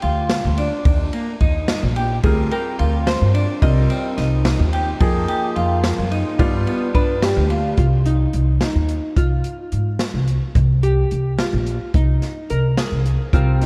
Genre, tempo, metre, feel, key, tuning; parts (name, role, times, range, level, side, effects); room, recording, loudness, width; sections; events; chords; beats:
progressive instrumental, band music in an uneven meter; 216 BPM (eighths); 5/8; straight; C minor; A4 = 440 Hz
clean electric guitar; arpeggios; 0.0-7.7, 13.3-13.7 s; Bb3 to G4; -27 LUFS; equal; lush chorus, analog delay
upright bass; bass; 0.0-13.7 s; Bb1 to Ab2; -21 LUFS; equal
open jazz drum kit; drums; 0.0-13.7 s; hi-hat, kick drum, ride cymbal, snare drum; -23 LUFS; equal
hollow-body jazz guitar; melody; 2.2-4.1, 6.9-13.7 s; Eb4 to Eb5; -28 LUFS; equal; analog chorus, analog delay
clear grand piano; accompaniment; 2.2-7.8, 13.3-13.7 s; F3 to Bb4; -28 LUFS; equal; lush chorus
moderate lush hall reverb, RT60 2.7 s; dreamy mix soaked in reverb, cassette tape; -19 LUFS; mono
0.0-7.8 A section; 7.8-13.7 B section
0.0 Dm; 0.9 Eb; 2.2 Bb69/D; 3.6 Cm7; 5.0 Fm7; 6.4 G7; 7.8 Cm; 9.2 Fm/C; 10.6 Gm7/C; 11.9 Cm7
0.02 0.30 0.57 | 0.85 1.13 1.41 1.68 1.96 | 2.24 2.51 2.79 3.07 3.35 | 3.62 3.90 4.18 4.45 4.73 | 5.01 5.28 5.56 5.84 6.11 | 6.39 6.67 6.95 7.22 7.50 | 7.78 8.05 8.33 8.61 8.89 | 9.16 9.44 9.72 10.00 10.27 | 10.55 10.83 11.11 11.38 11.66 | 11.94 12.22 12.50 12.77 13.05 | 13.33 13.61